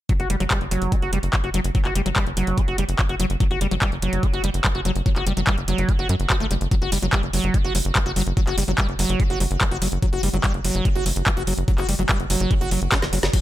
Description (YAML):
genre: psychedelic trance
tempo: 145 BPM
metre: 4/4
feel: straight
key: F# phrygian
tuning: A4 = 440 Hz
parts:
  - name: liquid acid bass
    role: riff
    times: 0.1-13.4 s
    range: E3 to F#4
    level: -26 LUFS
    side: equal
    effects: chorus, auto-pan, sidechain pumping, digital delay
  - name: electronic kick drum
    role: drums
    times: 0.1-13.4 s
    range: none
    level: -22 LUFS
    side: equal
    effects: none
  - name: garage drum kit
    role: drums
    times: 0.1-13.4 s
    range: crash cymbal, handclaps, hi-hat, snare drum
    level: -25 LUFS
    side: equal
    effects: none
  - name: tight sequencer bass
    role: bass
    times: 0.2-13.3 s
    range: F#1 to F#2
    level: -24 LUFS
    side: equal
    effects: none
room: digital ambience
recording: none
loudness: -19 LUFS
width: side -14 dB against mid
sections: 0.1-13.3 A section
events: drum fill 12.9-13.3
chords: 0.1 F#5